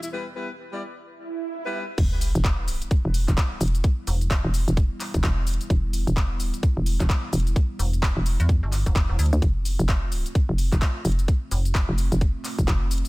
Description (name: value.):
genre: bass house.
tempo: 129 BPM.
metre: 4/4.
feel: swing 60% on 16ths.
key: E phrygian.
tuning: A4 = 444 Hz.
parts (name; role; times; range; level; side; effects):
dark analog pad; sustained chords; 0.0-13.1 s; G3 to F4; -39 LUFS; equal; chorus, sidechain pumping.
house drum kit; drums; 0.0-13.1 s; crash cymbal, handclaps, hi-hat, shaker; -32 LUFS; left 1 dB; overdrive.
warm horn section; stabs; 0.1-1.8 s; G3 to D5; -34 LUFS; left 2 dB; sidechain pumping, dub echo.
swell and sub drop; sound effects; 1.2-3.8 s; none; -32 LUFS; right 2 dB; none.
hollow knocking FM bass; bass; 2.0-13.0 s; E1 to D2; -23 LUFS; equal; tube saturation, sidechain pumping.
electronic kick drum; drums; 2.0-12.8 s; none; -21 LUFS; equal; none.
metallic FM bass; bass; 4.1-4.4, 7.8-11.9 s; E1 to E2; -22 LUFS; equal; overdrive, sidechain pumping.
room: little or no reverb.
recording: none.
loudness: -21 LUFS.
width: side -21 dB against mid.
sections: 0.0-2.0 A section; 2.0-13.1 B section.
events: swell 1.2-2.0; drop 2.0-13.1; impact 2.0-3.8.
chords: 0.0 Em; 9.4 F.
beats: | 0.12 0.58 1.05 1.51 | 1.98 2.44 2.91 3.38 | 3.84 4.31 4.77 5.24 | 5.70 6.17 6.63 7.10 | 7.56 8.03 8.49 8.96 | 9.42 9.89 10.35 10.82 | 11.28 11.75 12.21 12.68.